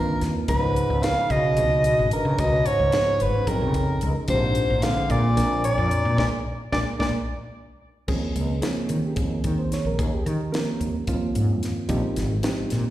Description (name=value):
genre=electric jazz fusion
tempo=221 BPM (eighths)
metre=7/8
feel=straight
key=Eb mixolydian from 8.1 s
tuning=A4 = 440 Hz
part: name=breathy soprano saxophone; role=melody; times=0.0-7.1 s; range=Bb4 to F5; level=-24 LUFS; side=right 1 dB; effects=slapback echo, tape echo
part: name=clear bass clarinet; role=second line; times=0.0-7.1 s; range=F2 to D3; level=-28 LUFS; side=left 2 dB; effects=slapback echo
part: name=reed electric piano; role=accompaniment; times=0.0-12.9 s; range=F3 to Db5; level=-28 LUFS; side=right 2 dB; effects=slapback echo
part: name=woody fretless electric bass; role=bass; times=0.0-12.8 s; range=Ab1 to Eb3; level=-24 LUFS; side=equal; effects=wide subtle chorus
part: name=tight funk drum kit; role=drums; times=0.2-12.8 s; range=crash cymbal, hi-hat, kick drum, snare drum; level=-30 LUFS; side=left 1 dB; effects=none
room=light reverb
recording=live gig heard through the venue's PA, recital hall reverb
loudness=-21 LUFS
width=side -14 dB against mid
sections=0.0-8.1 A section; 8.1-12.9 B section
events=drum fill 6.2-8.1; band accent 6.2-8.1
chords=0.5 Db7; 4.3 Bb9; 8.1 Eb13sus4; 11.9 Bb13sus4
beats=0.21 | 0.48 0.76 1.03 1.30 1.57 1.84 2.11 | 2.38 2.65 2.93 3.20 3.47 3.74 4.01 | 4.28 4.55 4.83 5.10 5.37 5.64 5.91 | 6.18 6.46 6.73 7.00 7.27 7.54 7.82 | 8.09 8.36 8.63 8.90 9.18 9.45 9.72 | 9.99 10.26 10.54 10.81 11.08 11.35 11.62 | 11.89 12.17 12.44 12.71